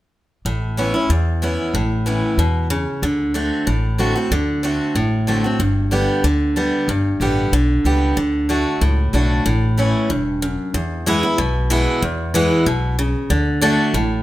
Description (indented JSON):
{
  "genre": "bluegrass",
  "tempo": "187 BPM",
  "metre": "4/4",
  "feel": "straight",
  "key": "A mixolydian",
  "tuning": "A4 = 440 Hz",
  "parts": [
    { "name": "picked steel-string acoustic guitar", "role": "accompaniment", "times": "0.5-14.2 s", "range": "E2 to G4", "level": "-18 LUFS", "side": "equal", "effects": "none" },
    { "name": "upright bass", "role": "bass", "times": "0.5-14.2 s", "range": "E1 to E2", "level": "-20 LUFS", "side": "equal", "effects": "none" }
  ],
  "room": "light reverb",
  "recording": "none",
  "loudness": "-16 LUFS",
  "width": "side -15 dB against mid",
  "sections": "0.5-10.7 A section; 10.7-14.2 B section",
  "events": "none",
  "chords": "0.5 Aadd9; 3.0 D7; 5.6 G; 8.2 D; 9.5 A; 10.7 E; 13.3 D"
}